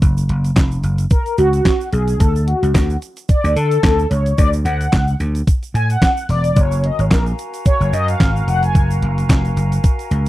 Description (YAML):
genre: early-eighties boogie funk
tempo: 110 BPM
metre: 4/4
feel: swing 56% on 16ths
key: F# major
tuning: A4 = 442 Hz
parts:
  - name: vintage slap bass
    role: bass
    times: 0.0-10.3 s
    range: E1 to D3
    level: -16 LUFS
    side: equal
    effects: none
  - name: detuned 8-bit digital drum machine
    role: drums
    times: 0.0-10.3 s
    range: handclaps, hi-hat, kick drum, snare drum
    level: -14 LUFS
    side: equal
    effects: none
  - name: tube shaker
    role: percussion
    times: 0.0-10.3 s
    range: none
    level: -39 LUFS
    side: right 10 dB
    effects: none
  - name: mellow synth brass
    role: accompaniment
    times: 1.1-8.9 s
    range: F#4 to G#5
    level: -19 LUFS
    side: left 1 dB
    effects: chorus
  - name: large flute ensemble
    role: sustained chords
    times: 6.6-10.3 s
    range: F#4 to A#5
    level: -27 LUFS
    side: left 1 dB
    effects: none
room: little or no reverb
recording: dry, close 1970s-style studio recording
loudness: -14 LUFS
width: side -16 dB against mid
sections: 0.0-10.3 A section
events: analog polysynth solo 0.0-10.3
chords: 0.0 F#add9; 2.2 Dmaj7; 6.6 F#maj9